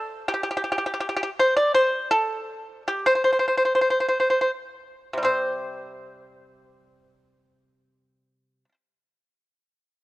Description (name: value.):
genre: chinese traditional.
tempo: 51-84 BPM.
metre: 2/4.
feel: rubato.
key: unclear.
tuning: A4 = 439 Hz.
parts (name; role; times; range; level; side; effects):
pipa; solo; 0.0-8.7 s; C3 to D5; -21 LUFS; equal; cassette tape.
room: light reverb.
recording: home recording on cassette.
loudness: -20 LUFS.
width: side -18 dB against mid.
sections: 0.0-5.2 A section; 5.2-9.8 B section.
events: slowing down 1.7-5.2.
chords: none.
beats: | 0.27 1.01 | 1.73 2.47 | 3.25 4.15 | 5.25 6.41 | 7.54 8.67.